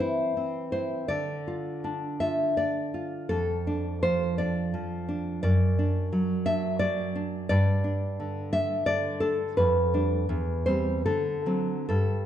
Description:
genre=romantic piece for solo classical guitar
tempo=70-89 BPM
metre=3/4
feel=rubato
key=G major from 5.4 s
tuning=A4 = 439 Hz
part: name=nylon-string guitar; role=solo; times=0.0-12.3 s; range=E2 to E5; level=-25 LUFS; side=equal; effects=none
room=wet recital hall reverb, RT60 1.5 s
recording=dark, warm production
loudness=-25 LUFS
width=side -10 dB against mid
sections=0.0-12.3 A section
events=none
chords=0.0 C/E; 1.1 Dm; 3.3 Dm/F; 5.4 D/F#; 7.5 G5; 9.6 G7/F; 10.3 C/E; 11.1 D7

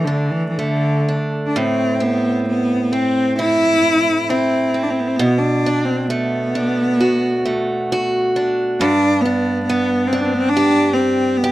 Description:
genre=celtic folk, Celtic slow air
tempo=58-70 BPM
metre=4/4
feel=rubato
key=A dorian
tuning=A4 = 439 Hz
part: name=clear cello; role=melody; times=0.0-11.5 s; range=D3 to E4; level=-17 LUFS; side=equal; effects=none
part: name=picked acoustic archtop guitar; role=accompaniment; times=0.0-11.5 s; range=G2 to G4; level=-19 LUFS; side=right 1 dB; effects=none
room=little or no reverb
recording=dry, close 1970s-style studio recording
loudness=-15 LUFS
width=side -15 dB against mid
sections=0.0-1.5 A section; 1.5-11.5 B section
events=none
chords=0.0 D5; 1.5 Am; 5.2 Bm7; 8.8 G

